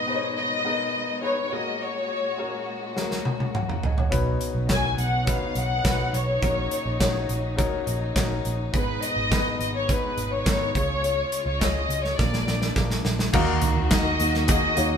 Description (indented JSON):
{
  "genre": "piano-driven pop",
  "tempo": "104 BPM",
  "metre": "4/4",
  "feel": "straight",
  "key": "F# major",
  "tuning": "A4 = 440 Hz",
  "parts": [
    { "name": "dark studio violin section", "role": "melody", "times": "0.0-15.0 s", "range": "B4 to G#5", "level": "-26 LUFS", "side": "left 2 dB", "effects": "none" },
    { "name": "clear baby grand piano", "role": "accompaniment", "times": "0.0-15.0 s", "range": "G#2 to A#5", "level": "-30 LUFS", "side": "left 4 dB", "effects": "none" },
    { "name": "warm studio string section", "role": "sustained chords", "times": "0.0-15.0 s", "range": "A#2 to F#4", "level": "-35 LUFS", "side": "equal", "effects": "none" },
    { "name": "modern studio drum kit", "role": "drums", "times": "3.0-14.9 s", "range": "crash cymbal, handclaps, hi-hat, kick drum, snare drum, toms", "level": "-25 LUFS", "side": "right 1 dB", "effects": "none" },
    { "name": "vintage muted picked electric bass", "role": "bass", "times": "4.1-15.0 s", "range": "G#1 to D#2", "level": "-28 LUFS", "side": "right 1 dB", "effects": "none" },
    { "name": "fingerpicked steel-string acoustic guitar", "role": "riff", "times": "13.3-15.0 s", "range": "D#3 to A#4", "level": "-29 LUFS", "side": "right 6 dB", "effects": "none" },
    { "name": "group handclap", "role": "percussion", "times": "13.9-14.0 s", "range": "none", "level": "barely audible", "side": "none", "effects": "none" }
  ],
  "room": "wet stone room reverb, RT60 1.1 s",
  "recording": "band playing live in one room",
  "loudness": "-22 LUFS",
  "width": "side -7 dB against mid",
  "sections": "0.0-13.3 A section; 13.3-15.0 B section",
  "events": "drum fill 3.0-4.1, 12.2-13.3; grand piano fill 3.0-4.1",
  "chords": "0.0 G#m; 1.5 F#add9/A#; 4.1 Badd9; 6.4 D#m7/A#; 8.7 G#m; 10.8 C#; 12.2 A#7; 13.3 D#m"
}